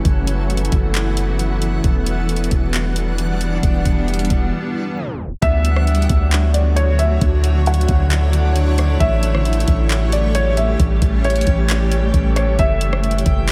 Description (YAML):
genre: hip hop, atmospheric cloud-rap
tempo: 134 BPM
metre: 4/4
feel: half-time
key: D major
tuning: A4 = 440 Hz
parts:
  - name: granular cloud pad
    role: sustained chords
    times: 0.0-13.5 s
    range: D3 to F#5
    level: -25 LUFS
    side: equal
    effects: built-in reverb, subtle chorus, sidechain pumping
  - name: backwards swelling texture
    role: texture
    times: 0.0-13.5 s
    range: C#4 to G5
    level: -32 LUFS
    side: equal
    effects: built-in reverb
  - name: long sustained 808-style bass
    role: bass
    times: 0.1-13.5 s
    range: E1 to D2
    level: -20 LUFS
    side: equal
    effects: none
  - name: smooth R&B drum kit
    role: drums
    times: 0.1-13.5 s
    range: handclaps, hi-hat, kick drum, rim click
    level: -23 LUFS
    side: equal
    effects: none
  - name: felt-muted upright piano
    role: melody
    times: 5.4-13.5 s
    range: C#5 to F#5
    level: -25 LUFS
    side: equal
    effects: low-pass filter, tape echo
room: moderate cathedral reverb, RT60 4.9 s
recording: dreamy mix soaked in reverb, tape stop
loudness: -17 LUFS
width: mono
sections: 0.0-5.4 A section; 5.4-13.5 B section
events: break 4.5-5.4; tape stop 5.0-5.4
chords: 0.0 F#m7; 1.8 Em9; 5.4 Dmaj7; 9.0 A7; 12.6 F#m7